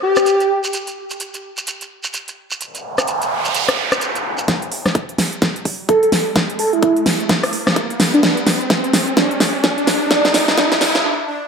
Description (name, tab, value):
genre	bass house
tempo	128 BPM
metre	4/4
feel	swing 60% on 16ths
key	unclear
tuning	A4 = 440 Hz
part	airy dreamy lead	melody	0.0-0.5, 5.9-11.4 s	D4 to A4	-18 LUFS	right 1 dB	chorus, analog delay
part	big-room dance drum kit	drums	0.2-11.0 s	hi-hat, rim click, snare drum	-17 LUFS	equal	studio ambience
part	shekere	percussion	0.2-4.5 s	none	-26 LUFS	right 3 dB	none
part	noise sweep and riser	sound effects	2.8-11.0 s	none	-21 LUFS	right 1 dB	none
part	electronic kick drum	drums	4.5-10.7 s	none	-20 LUFS	equal	high-pass filter on kick, studio ambience
room	wet plate reverb, RT60 1.1 s, digital ambience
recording	dreamy mix soaked in reverb, high-pass filter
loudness	-15 LUFS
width	side -6 dB against mid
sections	0.0-4.5 A section; 4.5-11.5 B section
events	noise sweep 2.8-4.5; build-up 4.5-11.5; drum fill 4.5-11.0; riser 4.5-11.0; break 11.0-11.5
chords	none